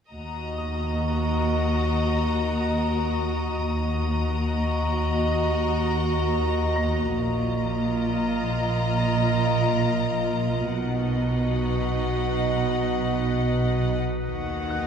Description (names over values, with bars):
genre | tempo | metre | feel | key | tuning
cinematic | 68 BPM | 4/4 | straight | Eb minor | A4 = 440 Hz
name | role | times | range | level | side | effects
rich chamber violin section | melody | 0.1-14.9 s | F#5 to Bb5 | -33 LUFS | left 6 dB | none
rich chamber violin section | second line | 0.1-14.9 s | D#4 to Eb5 | -30 LUFS | left 1 dB | none
drifting glass-harmonics texture | sustained chords | 0.5-14.9 s | F4 to Eb5 | -30 LUFS | right 1 dB | chorus, built-in reverb
rich symphonic cello section | bass | 0.1-14.9 s | Eb2 to Eb3 | -28 LUFS | right 1 dB | none
warm chamber double bass section | bass | 0.1-14.9 s | Bb1 to Eb2 | -27 LUFS | right 1 dB | none
rich chamber violin section | texture | 0.1-6.7 s | Bb5 to Eb6 | -38 LUFS | left 3 dB | none
warm concert grand piano | texture | 0.6-14.9 s | Bb5 to Bb6 | -39 LUFS | left 1 dB | none
room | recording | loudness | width
wet concert hall reverb, RT60 2.3 s | heard from further back in the room | -22 LUFS | side -7 dB against mid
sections
0.1-14.9 A section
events
none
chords
0.1 Ebm; 7.2 Bbsus4; 10.7 B; 14.2 Ebm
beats
| 0.13 1.01 1.89 2.77 | 3.66 4.54 5.42 6.30 | 7.19 8.07 8.95 9.83 | 10.71 11.60 12.48 13.36 | 14.24